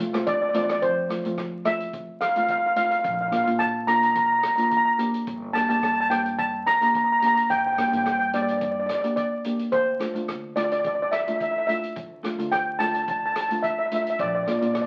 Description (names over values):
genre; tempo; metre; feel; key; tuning
calypso; 108 BPM; 4/4; straight; unclear; A4 = 440 Hz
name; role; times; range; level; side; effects
steel pan; melody; 0.0-14.9 s; C5 to Bb5; -24 LUFS; equal; none
steel pan; accompaniment; 0.0-14.9 s; A3 to G4; -32 LUFS; equal; none
upright bass; bass; 0.0-14.9 s; G1 to F3; -42 LUFS; equal; none
vintage drum kit; drums; 0.1-14.9 s; hi-hat, kick drum, rim click; -39 LUFS; equal; none
room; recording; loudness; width
wet studio reverb, RT60 0.5 s; very old 78 rpm record, vinyl crackle; -24 LUFS; mono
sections
0.8-14.9 A section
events
none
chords
0.0 Dm; 0.8 F; 3.0 Bb; 5.3 Gm; 9.7 Dmadd9; 14.2 Bb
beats
0.27 | 0.82 1.38 1.93 2.49 | 3.04 3.60 4.15 4.71 | 5.27 5.82 6.38 6.94 | 7.49 8.05 8.61 9.17 | 9.72 10.28 10.84 11.40 | 11.96 12.51 13.07 13.63 | 14.19 14.75